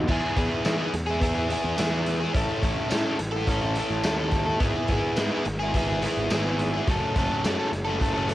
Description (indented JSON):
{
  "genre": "indie rock",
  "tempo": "106 BPM",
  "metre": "4/4",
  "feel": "straight",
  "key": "E major",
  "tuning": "A4 = 440 Hz",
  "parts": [
    { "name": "overdriven electric guitar", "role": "riff", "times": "0.0-8.3 s", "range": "F#3 to A4", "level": "-25 LUFS", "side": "equal", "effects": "cassette tape" },
    { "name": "fuzz picked electric bass", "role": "bass", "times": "0.0-8.3 s", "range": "F#1 to E3", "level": "-30 LUFS", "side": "equal", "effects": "overdrive" },
    { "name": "raw garage drum kit", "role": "drums", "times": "0.1-8.3 s", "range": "crash cymbal, hi-hat, kick drum, snare drum, tambourine", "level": "-28 LUFS", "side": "equal", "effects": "cassette tape" }
  ],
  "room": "little or no reverb",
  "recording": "home recording on cassette",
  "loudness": "-23 LUFS",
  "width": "side -15 dB against mid",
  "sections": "0.1-8.3 A section",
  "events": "none",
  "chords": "0.1 E; 2.3 A; 4.6 E/G#; 6.9 F#m"
}